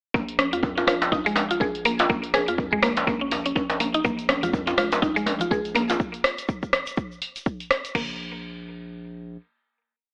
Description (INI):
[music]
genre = afro house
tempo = 123 BPM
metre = 4/4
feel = swing 58% on 16ths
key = Bb minor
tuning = A4 = 441 Hz
[part]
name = mallet-like synth pluck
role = arpeggios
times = 0.1-8.2 s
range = Ab3 to Ab4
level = -27 LUFS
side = equal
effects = chorus, sidechain pumping, tape echo
[part]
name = round analog bass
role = bass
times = 0.1-9.4 s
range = Bb1 to F2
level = -40 LUFS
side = equal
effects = sidechain pumping
[part]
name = afro-pop drum kit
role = drums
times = 0.1-8.1 s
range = crash cymbal, kick drum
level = -32 LUFS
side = equal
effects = none
[part]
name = djembe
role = percussion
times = 0.1-6.0 s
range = none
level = -29 LUFS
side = equal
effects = none
[part]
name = deep house drum kit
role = drums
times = 0.3-7.9 s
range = hi-hat, rim click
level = -27 LUFS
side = equal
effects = none
[part]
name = congas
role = percussion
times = 4.0-5.6 s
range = none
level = -38 LUFS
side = equal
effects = none
[part]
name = egg shaker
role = percussion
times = 4.0-7.9 s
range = none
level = -47 LUFS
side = equal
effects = none
[sound]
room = light reverb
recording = AM radio sound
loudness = -24 LUFS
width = mono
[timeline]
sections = 0.1-8.0 drop; 8.0-10.1 final note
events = drop 0.1-8.0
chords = 0.1 Bb5; 8.0 N.C.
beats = | 0.14 0.63 1.12 1.61 | 2.10 2.58 3.07 3.56 | 4.05 4.54 5.02 5.51 | 6.00 6.49 6.97 7.46 | 7.95 8.44 8.93